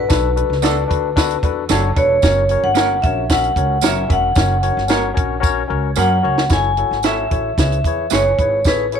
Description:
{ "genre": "uptempo 1960s-style soul", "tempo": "112 BPM", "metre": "4/4", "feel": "straight", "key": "unclear", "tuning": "A4 = 441 Hz", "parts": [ { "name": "vibraphone with hard mallets", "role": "melody", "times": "0.0-9.0 s", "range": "B4 to G#5", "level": "-18 LUFS", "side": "equal", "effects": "none" }, { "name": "barky tine electric piano", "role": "accompaniment", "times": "0.0-9.0 s", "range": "C#4 to E5", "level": "-22 LUFS", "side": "left 12 dB", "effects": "overdrive" }, { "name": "upright bass", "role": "bass", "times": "0.0-9.0 s", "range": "E1 to F#2", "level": "-21 LUFS", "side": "right 1 dB", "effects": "none" }, { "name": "compact cocktail drum kit", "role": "drums", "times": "0.1-9.0 s", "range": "hi-hat, kick drum, snare drum", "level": "-18 LUFS", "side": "right 1 dB", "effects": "none" }, { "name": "tambourine", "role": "percussion", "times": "0.1-8.8 s", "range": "none", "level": "-29 LUFS", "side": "right 16 dB", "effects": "none" }, { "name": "electric guitar through a small old amp", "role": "stabs", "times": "0.6-8.2 s", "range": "A3 to C#5", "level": "-25 LUFS", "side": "right 12 dB", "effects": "none" } ], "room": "moderate spring reverb, RT60 2.4 s", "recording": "1960s-style stereo with parts hard left and right", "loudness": "-14 LUFS", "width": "side -7 dB against mid", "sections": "0.0-6.5 A section; 6.5-9.0 B section", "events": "drum fill 5.4-6.5", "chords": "0.0 Bm7; 2.2 F#; 6.5 F#m7; 7.6 C#m7" }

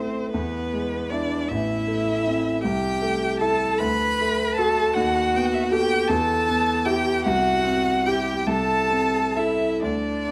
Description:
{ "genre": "classical, slow romantic movement for piano trio", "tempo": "43-53 BPM (dotted quarters)", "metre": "6/8", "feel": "rubato", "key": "unclear", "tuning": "A4 = 438 Hz", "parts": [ { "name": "rich violin", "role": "melody", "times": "0.0-10.3 s", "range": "B4 to B5", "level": "-28 LUFS", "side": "equal", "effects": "none" }, { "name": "rich cello", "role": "second line", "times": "0.0-10.3 s", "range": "B3 to B4", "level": "-28 LUFS", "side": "equal", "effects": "none" }, { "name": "warm grand piano", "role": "accompaniment", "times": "0.0-10.3 s", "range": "A1 to A4", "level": "-27 LUFS", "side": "equal", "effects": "none" } ], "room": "moderate recital hall reverb, RT60 1.8 s", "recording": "close, detailed microphones", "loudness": "-23 LUFS", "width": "mono", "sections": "0.0-10.3 A section", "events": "none", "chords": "0.3 E7; 1.5 Am; 2.6 Am7/C; 3.8 D; 5.0 B7/D#; 6.1 Em; 7.3 C; 8.5 Am/C" }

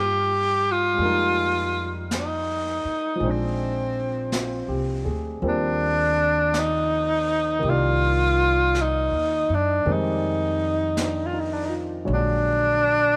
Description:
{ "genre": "jazz ballad", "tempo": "54 BPM", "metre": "4/4", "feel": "swing 68% on 8ths", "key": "unclear", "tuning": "A4 = 443 Hz", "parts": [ { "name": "breathy tenor saxophone", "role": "melody", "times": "0.0-13.2 s", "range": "C4 to G4", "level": "-24 LUFS", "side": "equal", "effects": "none" }, { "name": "warm concert grand piano", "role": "accompaniment", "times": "0.0-13.2 s", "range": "D3 to D5", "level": "-32 LUFS", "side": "equal", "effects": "none" }, { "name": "upright bass", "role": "bass", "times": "0.0-13.2 s", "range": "Bb1 to G2", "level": "-30 LUFS", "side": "equal", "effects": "none" }, { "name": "jazz brush drum kit", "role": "drums", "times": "1.0-13.2 s", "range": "brushed snare drum, hi-hat, snare drum", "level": "-37 LUFS", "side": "equal", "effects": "none" } ], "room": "light reverb, small room ambience", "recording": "none", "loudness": "-23 LUFS", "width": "mono", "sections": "0.0-13.2 A section", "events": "none", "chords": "0.0 Cm11 (rootless); 1.0 Fm11; 3.2 Bb9; 5.4 Eb69; 7.6 Cm9; 9.9 Fm9; 12.1 Bb7alt" }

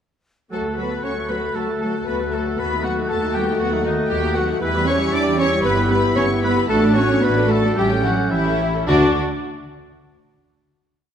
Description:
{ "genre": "quick classical-period movement for symphony orchestra", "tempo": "104-120 BPM", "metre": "4/4", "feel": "rubato", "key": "D major", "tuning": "A4 = 439 Hz", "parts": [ { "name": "warm studio violin section", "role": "melody", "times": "0.5-9.2 s", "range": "D5 to D6", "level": "-28 LUFS", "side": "left 3 dB", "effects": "none" }, { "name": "concert flute", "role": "second line", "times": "0.5-9.2 s", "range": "D6 to G6", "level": "-32 LUFS", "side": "left 2 dB", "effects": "none" }, { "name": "rich chamber violin section", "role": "second line", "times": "0.5-9.2 s", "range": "D4 to D5", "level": "-26 LUFS", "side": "left 3 dB", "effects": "none" }, { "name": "warm clarinet", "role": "second line", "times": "0.5-9.1 s", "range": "C#4 to A4", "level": "-26 LUFS", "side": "left 1 dB", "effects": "none" }, { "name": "warm oboe", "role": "second line", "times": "0.5-9.1 s", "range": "D#4 to D5", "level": "-27 LUFS", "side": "right 1 dB", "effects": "none" }, { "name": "rich chamber viola section", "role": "accompaniment", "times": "0.5-9.2 s", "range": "E3 to A4", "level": "-28 LUFS", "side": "right 2 dB", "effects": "none" }, { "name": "warm French horn section", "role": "sustained chords", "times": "0.5-9.1 s", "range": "G3 to G4", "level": "-25 LUFS", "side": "left 4 dB", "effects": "none" }, { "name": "dark chamber cello section", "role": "bass", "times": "0.5-9.2 s", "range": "D3 to D4", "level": "-24 LUFS", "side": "right 3 dB", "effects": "none" }, { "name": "dark chamber double bass section", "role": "bass", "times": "0.5-9.2 s", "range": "G1 to E2", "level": "-26 LUFS", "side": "right 3 dB", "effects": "none" } ], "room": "wet scoring stage reverb, RT60 1.6 s", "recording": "none", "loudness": "-17 LUFS", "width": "side -8 dB against mid", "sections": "0.5-8.9 A section; 8.9-11.1 final chord", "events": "slowing down 3.6-8.9", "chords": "0.5 D; 2.6 B7/D#; 4.6 Em; 5.7 Em/G; 6.7 D/A; 7.8 A7; 8.9 D" }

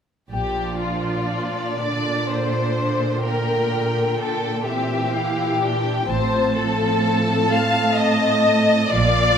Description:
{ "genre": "classical, slow romantic movement for string orchestra", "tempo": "42 BPM (dotted quarters)", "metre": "6/8", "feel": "rubato", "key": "Bb major", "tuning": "A4 = 440 Hz", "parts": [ { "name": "warm studio violin section", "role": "melody", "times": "0.3-9.4 s", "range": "D5 to A5", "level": "-29 LUFS", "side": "left 1 dB", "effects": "none" }, { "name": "warm studio violin section", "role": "second line", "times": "0.3-9.4 s", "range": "F4 to F5", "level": "-21 LUFS", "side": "left 3 dB", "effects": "none" }, { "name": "rich studio viola section", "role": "accompaniment", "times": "0.3-9.4 s", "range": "D3 to E4", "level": "-26 LUFS", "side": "right 2 dB", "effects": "none" }, { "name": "clear symphonic double bass section", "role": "bass", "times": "0.3-1.3, 6.1-9.4 s", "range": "A1 to Bb1", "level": "-26 LUFS", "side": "right 3 dB", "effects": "none" }, { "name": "warm studio cello section", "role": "bass", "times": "0.3-9.4 s", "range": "A2 to Bb2", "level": "-24 LUFS", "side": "right 3 dB", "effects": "none" } ], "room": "wet recital hall reverb, RT60 1.7 s", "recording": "none", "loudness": "-18 LUFS", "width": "side -8 dB against mid", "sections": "0.3-9.4 A section", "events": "none", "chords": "0.3 Bb; 3.2 C7/Bb; 6.1 F/A" }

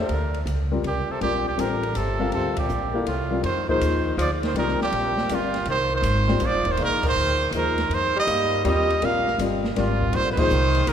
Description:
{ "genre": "modal jazz", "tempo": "162 BPM", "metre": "3/4", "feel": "swing 66% on 8ths", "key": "G dorian, F dorian from 3.4 s", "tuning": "A4 = 443 Hz", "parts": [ { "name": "clear trumpet", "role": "melody", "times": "0.0-10.9 s", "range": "F4 to F5", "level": "-24 LUFS", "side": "right 4 dB", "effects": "none" }, { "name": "warm tenor saxophone", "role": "second line", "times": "0.0-10.9 s", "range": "A2 to Bb3", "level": "-30 LUFS", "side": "left 3 dB", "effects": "none" }, { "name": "warm concert grand piano", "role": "accompaniment", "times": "0.0-10.5 s", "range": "F3 to F5", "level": "-27 LUFS", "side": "left 4 dB", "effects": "none" }, { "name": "upright bass", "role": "bass", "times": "0.0-10.9 s", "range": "Eb1 to G2", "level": "-26 LUFS", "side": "equal", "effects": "none" }, { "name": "open jazz drum kit", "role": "drums", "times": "0.1-10.9 s", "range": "crash cymbal, hi-hat, kick drum, ride cymbal, snare drum", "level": "-32 LUFS", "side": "equal", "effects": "none" } ], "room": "wet church reverb, RT60 3.5 s", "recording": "recorded in a church or concert hall", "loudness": "-20 LUFS", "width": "side -8 dB against mid", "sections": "0.0-3.4 A section; 3.4-10.9 B section", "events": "band accent 2.5, 7.0, 10.3", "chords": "0.0 Gm11; 3.4 F9sus4" }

